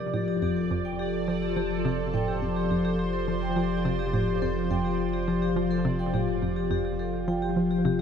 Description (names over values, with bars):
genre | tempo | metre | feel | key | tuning
ambient, sequencer-driven space music | 105 BPM | 4/4 | straight | unclear | A4 = 442 Hz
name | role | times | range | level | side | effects
lush unison pad | sustained chords | 0.0-8.0 s | F3 to G5 | -28 LUFS | left 1 dB | chorus
vibraphone with medium hard mallets | arpeggios | 0.0-8.0 s | G4 to G5 | -33 LUFS | moving between left 10 dB and equal | auto-pan, tape echo
hollow square pluck | riff | 0.0-8.0 s | F2 to F3 | -31 LUFS | right 1 dB | chorus, tape echo
warm sub bass | bass | 0.0-8.0 s | F1 | -36 LUFS | right 2 dB | none
bubbling stepped-filter texture | texture | 0.0-8.0 s | D5 | -38 LUFS | right 10 dB | chorus, built-in reverb
room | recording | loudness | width
moderate plate reverb, RT60 2.6 s | none | -25 LUFS | side -7 dB against mid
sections
0.0-8.0 A section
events
none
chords
0.0 F